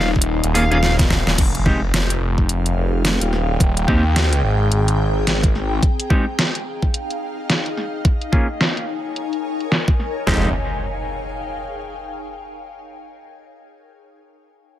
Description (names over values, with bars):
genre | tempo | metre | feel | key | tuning
glitch hop | 108 BPM | 4/4 | swing 59% on 16ths | F minor | A4 = 440 Hz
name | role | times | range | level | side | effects
dark smooth lead guitar | melody | 0.0-0.9 s | F5 | -25 LUFS | right 1 dB | overdrive, digital delay
phased detuned saw bass | bass | 0.0-5.8, 10.3-10.5 s | Eb1 to Eb2 | -18 LUFS | equal | phaser
pop drum kit | drums | 0.0-10.1 s | crash cymbal, hi-hat, snare drum | -20 LUFS | equal | overdrive, low-pass filter on hats, low-pass filter on snare, low-pass filter on cymbals, low-pass filter on room
ethereal airy pad | texture | 0.0-12.5 s | C4 to Bb5 | -27 LUFS | left 2 dB | ensemble chorus, built-in reverb, phaser, sidechain pumping
pop drum kit | drums | 0.2-10.4 s | kick drum, snare drum, toms | -18 LUFS | equal | overdrive
clean electric guitar | stabs | 0.5-10.5 s | Ab3 to Ab4 | -24 LUFS | equal | sidechain pumping, low-pass filter, digital delay
impact | sound effects | 1.4-3.6, 10.3-12.5 s | none | -28 LUFS | equal | none
room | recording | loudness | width
little or no reverb | none | -17 LUFS | side -13 dB against mid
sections
0.0-1.4 A section; 1.4-10.3 B section; 10.3-12.5 C section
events
drop 0.0-1.4; drum fill 0.8-1.4; impact 1.4-3.6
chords
0.0 Eb7sus4; 1.4 Fm9; 8.0 Eb7sus4; 10.3 Fm9